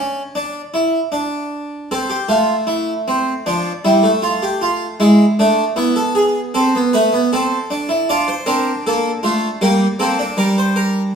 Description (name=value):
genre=classical, baroque-style 4-part fugue for harpsichord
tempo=78 BPM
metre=4/4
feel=straight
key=D minor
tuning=A4 = 440 Hz
part: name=harpsichord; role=solo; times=0.0-11.1 s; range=F3 to D5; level=-14 LUFS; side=right 1 dB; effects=none
room=wet stone room reverb, RT60 1.3 s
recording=small room ambience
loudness=-14 LUFS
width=side -6 dB against mid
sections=0.0-11.2 A section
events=none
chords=0.0 N.C.; 1.9 Am; 3.5 Dm/F; 5.0 E/G#; 6.5 Am; 8.1 Dm; 9.6 Gm